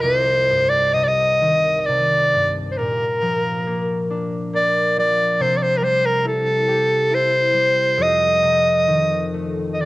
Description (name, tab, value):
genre	celtic folk, Celtic slow air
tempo	64-71 BPM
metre	3/4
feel	rubato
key	C dorian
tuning	A4 = 440 Hz
part	bright soprano saxophone	melody	0.0-9.9 s	A4 to Eb5	-17 LUFS	equal	cassette tape
part	concert harp	accompaniment	0.0-9.9 s	C2 to F5	-23 LUFS	left 1 dB	cassette tape
room	light reverb, small room ambience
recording	home recording on cassette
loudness	-16 LUFS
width	side -19 dB against mid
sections	0.0-9.9 A section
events	none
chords	0.0 Cmadd9; 2.8 Bb; 5.4 C; 8.0 F7